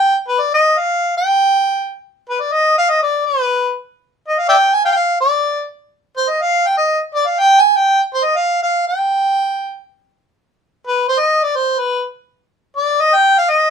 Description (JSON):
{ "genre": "klezmer", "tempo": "123 BPM", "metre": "2/4", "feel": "straight", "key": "G phrygian dominant", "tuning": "A4 = 440 Hz", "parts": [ { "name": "mellow harmonica", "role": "solo", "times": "0.0-13.7 s", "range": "B4 to Ab5", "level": "-13 LUFS", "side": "equal", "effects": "none" } ], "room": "light reverb", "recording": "close, detailed microphones", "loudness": "-13 LUFS", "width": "side -6 dB against mid", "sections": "0.0-2.3 A section; 2.3-10.1 A section; 10.1-13.7 B section", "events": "none", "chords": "none", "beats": "| 0.28 0.78 | 1.27 1.76 | 2.25 2.74 | 3.23 3.72 | 4.21 4.71 | 5.20 5.69 | 6.18 6.67 | 7.16 7.64 | 8.13 8.62 | 9.11 9.60 | 10.09 10.57 | 11.06 11.54 | 12.03 12.52 | 13.00 13.49" }